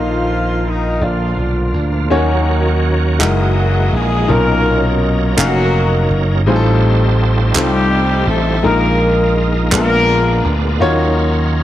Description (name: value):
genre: slow gospel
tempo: 55 BPM (dotted quarters)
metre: 6/8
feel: straight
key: Eb minor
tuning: A4 = 440 Hz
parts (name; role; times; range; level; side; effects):
- breathy alto saxophone; melody; 0.0-1.9 s; Eb4 to F4; -24 LUFS; right 2 dB; none
- mellow horn section; melody; 0.0-10.8 s; Eb3 to Bb4; -19 LUFS; left 2 dB; none
- warm baby grand piano; accompaniment; 0.0-11.6 s; A2 to E#5; -18 LUFS; left 2 dB; none
- bright tonewheel organ; sustained chords; 0.0-11.6 s; D3 to F5; -21 LUFS; right 4 dB; slow rotary speaker, chorus vibrato
- mellow French horn section; sustained chords; 0.0-2.1 s; D3 to Eb4; -31 LUFS; equal; none
- slap bass; bass; 0.0-11.6 s; E#1 to Eb2; -16 LUFS; equal; none
- group handclap; percussion; 3.2-10.1 s; none; -18 LUFS; right 4 dB; none
room: light reverb, studio ambience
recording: none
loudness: -12 LUFS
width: side -13 dB against mid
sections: 0.0-2.1 A section; 2.1-11.6 B section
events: none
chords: 0.0 Bbsus4; 1.0 Bb; 2.1 Ebm7; 3.2 Gb13; 4.3 Bmaj9#11; 6.5 F9/A; 8.6 Bb7sus4; 9.7 Bb7b9; 10.8 Ebm9